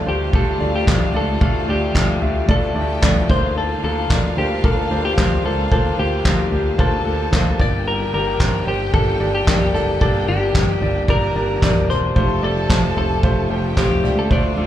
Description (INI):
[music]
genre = piano-driven pop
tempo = 112 BPM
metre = 4/4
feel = straight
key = unclear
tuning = A4 = 440 Hz
[part]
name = clean electric guitar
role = melody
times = 0.0-14.7 s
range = G4 to D5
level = -23 LUFS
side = left 2 dB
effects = wide subtle chorus, slapback echo, ping-pong delay
[part]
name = warm studio violin section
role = second line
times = 0.0-14.7 s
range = F4 to Bb5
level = -30 LUFS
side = left 1 dB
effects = slapback echo
[part]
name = clear grand piano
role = accompaniment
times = 0.0-14.7 s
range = G2 to F5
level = -23 LUFS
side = right 1 dB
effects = slapback echo
[part]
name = fretless electric bass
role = bass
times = 0.1-14.7 s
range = E1 to D2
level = -22 LUFS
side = equal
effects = none
[part]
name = soft-mallet drum kit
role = drums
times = 0.1-14.7 s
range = crash cymbal, handclaps, kick drum, ride cymbal, snare drum, toms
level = -20 LUFS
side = equal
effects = none
[sound]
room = small room ambience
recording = live gig heard through the venue's PA, club ambience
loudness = -16 LUFS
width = side -12 dB against mid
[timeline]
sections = 0.0-14.7 A section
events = none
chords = 0.0 Dm; 3.3 Bbadd9/D; 7.6 Gm; 12.2 Fadd9